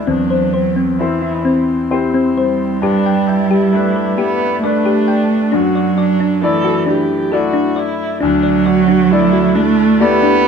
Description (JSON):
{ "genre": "neoclassical piano and strings", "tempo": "67 BPM", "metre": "3/4", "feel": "rubato", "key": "D mixolydian", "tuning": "A4 = 440 Hz", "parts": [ { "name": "dark cello", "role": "second line", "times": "0.0-10.5 s", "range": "E3 to B3", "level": "-15 LUFS", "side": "right 6 dB", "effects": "none" }, { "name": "bright concert grand piano", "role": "accompaniment", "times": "0.0-10.5 s", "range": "D2 to D5", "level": "-18 LUFS", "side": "left 6 dB", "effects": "none" }, { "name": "dark viola", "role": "accompaniment", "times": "0.0-10.5 s", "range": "C4 to A4", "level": "-21 LUFS", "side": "right 2 dB", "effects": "none" }, { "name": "thumb-piano-like synth pluck", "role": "arpeggios", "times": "0.1-10.5 s", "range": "C4 to G5", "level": "-18 LUFS", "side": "left 4 dB", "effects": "chorus" } ], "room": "moderate stone room reverb, RT60 1.1 s", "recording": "band playing live in one room", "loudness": "-12 LUFS", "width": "side -6 dB against mid", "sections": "0.0-10.5 A section", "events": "none", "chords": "0.1 C/E; 2.8 Gadd9; 5.5 Dadd9/F#; 8.2 Dadd9" }